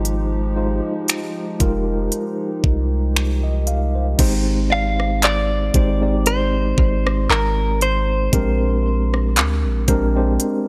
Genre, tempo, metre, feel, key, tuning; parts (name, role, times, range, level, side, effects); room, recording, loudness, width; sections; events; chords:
contemporary R&B; 58 BPM; 4/4; swing 54% on 16ths; A4 = 439 Hz
mellow tine electric piano; accompaniment; 0.0-10.7 s; Ab3 to F5; -25 LUFS; equal
hollow soft pad; sustained chords; 0.0-4.2 s; F3 to G4; -34 LUFS; equal; chorus
long sustained 808-style bass; bass; 0.0-10.4 s; F1 to D2; -22 LUFS; equal
trap drum kit; drums; 0.1-10.7 s; crash cymbal, finger snaps, handclaps, hi-hat, kick drum, rim click; -22 LUFS; equal; overdrive
direct-recorded clean electric guitar; melody; 4.7-9.3 s; Bb4 to F5; -24 LUFS; equal; digital delay
mallet-like synth pluck; texture; 4.7-10.7 s; C5 to D5; -38 LUFS; equal
little or no reverb; -19 LUFS; mono
0.0-4.2 A section; 4.2-10.7 B section
0.0 Fm9; 4.2 Abmaj7; 8.3 Bb13